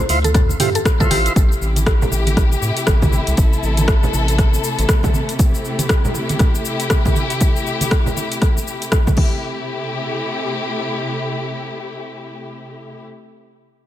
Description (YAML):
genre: afro house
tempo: 119 BPM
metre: 4/4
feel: swing 60% on 16ths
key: unclear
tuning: A4 = 440 Hz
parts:
  - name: mallet-like synth pluck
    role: arpeggios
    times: 0.0-1.2 s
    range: G4 to A4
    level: -23 LUFS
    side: right 1 dB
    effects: chorus, sidechain pumping, digital delay
  - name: round analog bass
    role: bass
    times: 0.0-4.9 s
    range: A1 to A2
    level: -19 LUFS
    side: equal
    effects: sidechain pumping
  - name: deep house drum kit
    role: drums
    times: 0.0-9.3 s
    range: crash cymbal, hi-hat, rim click, shaker, toms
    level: -23 LUFS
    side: left 1 dB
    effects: overdrive
  - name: tonewheel organ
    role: stabs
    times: 0.1-1.3 s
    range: E4 to C5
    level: -23 LUFS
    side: right 1 dB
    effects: slow rotary speaker, sidechain pumping, digital delay
  - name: congas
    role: percussion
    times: 0.1-9.3 s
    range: none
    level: -24 LUFS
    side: right 2 dB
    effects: none
  - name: electronic kick drum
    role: drums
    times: 0.3-9.3 s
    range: none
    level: -16 LUFS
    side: equal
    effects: overdrive
  - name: warm studio string section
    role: sustained chords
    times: 1.4-13.0 s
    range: C3 to A4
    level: -23 LUFS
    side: left 2 dB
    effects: sidechain pumping
room: digital ambience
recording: none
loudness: -15 LUFS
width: side -13 dB against mid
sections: 0.0-1.4 A section; 1.4-9.4 B section; 9.4-13.5 C section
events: none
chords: 0.0 Dm9; 1.4 Am7; 5.4 C6